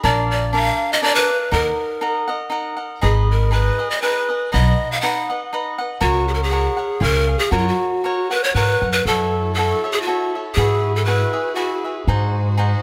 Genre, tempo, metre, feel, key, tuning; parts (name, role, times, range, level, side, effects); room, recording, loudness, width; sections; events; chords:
mexican folk, mariachi; 120 BPM; 3/4; swing 53% on 8ths, rubato; F# major, F# minor from 9.1 s; A4 = 435 Hz
breathy pan flute; melody; 0.0-11.9 s; E#4 to F#5; -22 LUFS; equal
cavaquinho; accompaniment; 0.0-12.8 s; D4 to F#5; -25 LUFS; equal
upright bass; bass; 0.0-12.7 s; G#1 to G#2; -21 LUFS; equal
clear studio violin section; sustained chords; 9.1-12.8 s; G#3 to B#4; -33 LUFS; equal
light reverb; close, detailed microphones; -19 LUFS; mono
0.0-9.1 A section; 9.1-12.8 B section
0.0 A#; 1.5 D#m; 3.0 G#m; 4.5 B; 6.0 F#/C#; 7.0 C#; 7.5 F#; 9.1 F#m7; 10.6 Eadd9/G#; 12.1 G#7